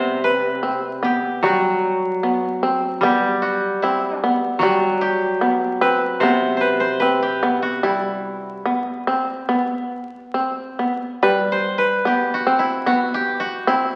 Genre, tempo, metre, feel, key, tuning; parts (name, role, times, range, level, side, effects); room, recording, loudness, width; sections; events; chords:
japanese traditional, Japanese chamber music; 74 BPM; 4/4; rubato; A4 = 440 Hz
koto; melody; 0.0-14.0 s; E4 to C5; -24 LUFS; equal
shamisen; second line; 0.0-14.0 s; G3 to C4; -23 LUFS; equal
koto; accompaniment; 0.0-8.6 s; C3 to G3; -25 LUFS; equal
wet recital hall reverb, RT60 1.7 s; very old 78 rpm record, vinyl crackle; -20 LUFS; mono
0.0-11.2 A section; 11.2-14.0 B section